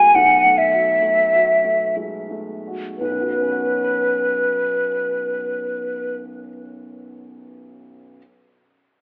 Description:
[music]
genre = classical, impressionist duo for flute and grand piano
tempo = 55-73 BPM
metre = 3/4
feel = rubato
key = unclear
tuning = A4 = 439 Hz
[part]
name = hollow silver concert flute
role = melody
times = 0.0-6.2 s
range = B4 to G#5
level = -16 LUFS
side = equal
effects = none
[part]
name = dark baby grand piano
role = accompaniment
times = 0.0-8.2 s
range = B1 to F#4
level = -29 LUFS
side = equal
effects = none
[sound]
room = wet concert hall reverb, RT60 2.0 s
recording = telephone sound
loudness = -16 LUFS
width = side -33 dB against mid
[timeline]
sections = 0.0-3.0 A section; 3.0-6.0 B section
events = slowing down 0.0-3.0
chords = 0.0 B7sus4; 3.0 Bsus2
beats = | 0.15 1.01 1.95 | 2.99 3.97 4.95

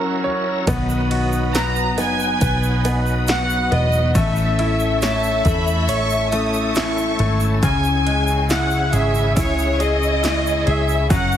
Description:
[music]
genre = pop ballad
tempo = 69 BPM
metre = 4/4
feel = straight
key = unclear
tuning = A4 = 438 Hz
[part]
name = bright grand piano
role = accompaniment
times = 0.0-11.4 s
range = C#3 to C#5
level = -23 LUFS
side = equal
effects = none
[part]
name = bright tonewheel organ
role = sustained chords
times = 0.0-11.4 s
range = C#3 to A#4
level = -26 LUFS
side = right 1 dB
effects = overdrive, chorus vibrato, slow rotary speaker
[part]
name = picked steel-string acoustic guitar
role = arpeggios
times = 0.7-11.4 s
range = A2 to B4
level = -28 LUFS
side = left 6 dB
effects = digital delay
[part]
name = vintage muted fingered electric bass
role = bass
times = 0.7-11.4 s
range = E1 to E2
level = -21 LUFS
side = equal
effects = none
[part]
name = punchy analog drum machine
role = drums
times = 0.7-11.3 s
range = kick drum, ride cymbal, snare drum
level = -23 LUFS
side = equal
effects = none
[part]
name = egg shaker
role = percussion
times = 0.7-11.4 s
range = none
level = -36 LUFS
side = right 7 dB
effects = none
[part]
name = dark studio violin section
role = melody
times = 1.6-11.4 s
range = C#5 to A#5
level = -22 LUFS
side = left 1 dB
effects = none
[part]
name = bright studio violin section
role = second line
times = 5.0-7.4 s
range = A5 to D#6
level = -28 LUFS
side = equal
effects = none
[sound]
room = light reverb, small room ambience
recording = heavily compressed radio sound, multiband compression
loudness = -16 LUFS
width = side -10 dB against mid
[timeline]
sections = 0.0-11.4 A section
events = none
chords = 0.0 F#7; 0.7 B; 4.2 A; 7.6 C#m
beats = | 0.67 1.54 2.41 3.28 | 4.15 5.02 5.89 6.76 | 7.63 8.50 9.37 10.24 | 11.11

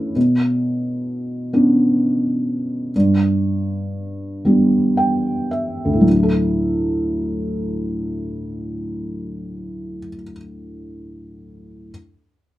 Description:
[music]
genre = folk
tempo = 36-44 BPM (dotted quarters)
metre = 6/8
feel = straight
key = D major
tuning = A4 = 442 Hz
[part]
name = felt-muted upright piano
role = melody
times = 0.0-11.9 s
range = D2 to G5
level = -18 LUFS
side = equal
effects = none
[sound]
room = moderate small room reverb, RT60 0.5 s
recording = minimal, uncompressed stereo recording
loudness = -17 LUFS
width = side -15 dB against mid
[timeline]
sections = 0.0-6.1 A section; 6.1-9.4 B section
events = slowing down 0.2-6.1; felt piano fill 4.5-6.1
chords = 0.2 Bmadd9; 2.9 G; 6.1 Dadd9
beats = | 0.16 1.53 | 2.95 4.45 | 6.06 7.73

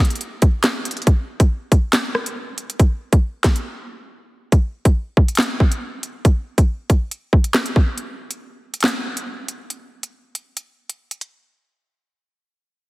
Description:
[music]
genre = hip hop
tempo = 139 BPM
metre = 4/4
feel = half-time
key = none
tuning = none
[part]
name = drill drum kit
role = drums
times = 0.0-11.3 s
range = handclaps, hi-hat, kick drum, rim click, snare drum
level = -16 LUFS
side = equal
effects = none
[sound]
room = light reverb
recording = heavily compressed radio sound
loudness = -16 LUFS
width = side -21 dB against mid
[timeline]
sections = 0.0-4.5 A section; 4.5-11.4 B section; 11.4-12.9 C section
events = break 3.7-4.5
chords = none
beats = 0.21 0.64 | 1.07 1.50 1.93 2.36 | 2.80 3.23 3.66 4.09 | 4.52 4.95 5.39 5.82 | 6.25 6.68 7.11 7.54 | 7.97 8.41 8.84 9.27 | 9.70 10.13 10.56 11.00

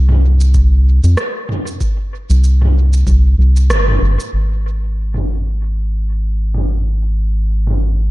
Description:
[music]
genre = ambient dub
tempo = 95 BPM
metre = 4/4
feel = swing 57% on 16ths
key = unclear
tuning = A4 = 441 Hz
[part]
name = round analog bass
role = bass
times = 0.0-8.1 s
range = G1 to F2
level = -12 LUFS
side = equal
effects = none
[part]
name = organic electronic drum kit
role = drums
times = 0.1-7.8 s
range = cabasa, rim click, toms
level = -21 LUFS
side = right 1 dB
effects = low-pass filter on perc, low-pass filter on snare, low-pass filter on toms, low-pass filter on room, dub echo
[part]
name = electronic kick drum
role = drums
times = 0.5-3.2 s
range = none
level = -18 LUFS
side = equal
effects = overdrive
[sound]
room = little or no reverb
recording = dark, warm production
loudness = -12 LUFS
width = side -19 dB against mid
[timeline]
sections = 0.0-4.3 A section; 4.3-8.1 B section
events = band accent 3.7-4.0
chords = none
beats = 0.55 1.18 | 1.81 2.44 3.07 3.70 | 4.33 4.97 5.60 6.23 | 6.86 7.49

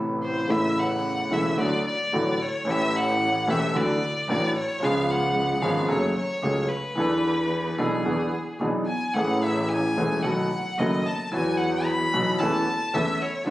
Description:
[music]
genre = tango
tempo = 111 BPM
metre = 4/4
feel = rubato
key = A major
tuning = A4 = 440 Hz
[part]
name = warm concert grand piano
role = accompaniment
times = 0.0-13.5 s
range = E1 to A4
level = -24 LUFS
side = equal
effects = none
[part]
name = clear double bass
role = bass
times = 0.0-13.5 s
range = E1 to E2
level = -31 LUFS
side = right 1 dB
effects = none
[part]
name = clear violin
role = second line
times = 0.2-13.5 s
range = G#4 to B5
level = -27 LUFS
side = left 1 dB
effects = none
[sound]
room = moderate recital hall reverb, RT60 1.4 s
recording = recorded on a phone in the room, studio reverb, compression, nothing above 10.4 kHz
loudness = -22 LUFS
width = side -16 dB against mid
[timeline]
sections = 0.5-13.5 A section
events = violin solo 0.5-13.5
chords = 0.5 Aadd9; 1.6 D; 2.7 A7; 3.7 Dadd9; 4.8 C#7; 5.9 F#madd9; 7.0 E7sus4; 8.1 E7; 9.2 Amaj7; 10.2 B7; 11.3 Esus2; 12.4 A/E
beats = | 0.49 1.04 1.58 2.13 | 2.67 3.21 3.75 4.29 | 4.82 5.36 5.89 6.43 | 6.97 7.52 8.06 8.60 | 9.15 9.70 10.24 10.78 | 11.33 11.87 12.41 12.95 | 13.48

